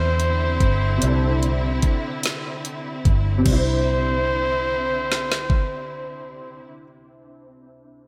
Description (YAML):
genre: slow six-eight R&B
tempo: 49 BPM (dotted quarters)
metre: 6/8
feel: straight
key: C major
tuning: A4 = 436 Hz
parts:
  - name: clear flugelhorn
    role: melody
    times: 0.0-6.7 s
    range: C5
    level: -28 LUFS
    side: equal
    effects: none
  - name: warm concert grand piano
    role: accompaniment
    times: 0.0-8.1 s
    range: C3 to C5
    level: -30 LUFS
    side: equal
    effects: ensemble chorus
  - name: rich studio string section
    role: sustained chords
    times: 0.0-6.7 s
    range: D3 to E4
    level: -33 LUFS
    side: equal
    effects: none
  - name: vintage muted fingered electric bass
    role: bass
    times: 0.0-6.7 s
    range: G1 to E2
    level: -24 LUFS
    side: equal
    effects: none
  - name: smooth R&B drum kit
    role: drums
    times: 0.2-5.7 s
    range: crash cymbal, hi-hat, kick drum, snare drum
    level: -24 LUFS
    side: equal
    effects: gated reverb
room: light reverb, studio reverb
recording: bright 1980s-style digital production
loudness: -21 LUFS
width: mono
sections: 0.0-3.5 A section; 3.5-5.9 B section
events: none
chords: 0.0 Cadd9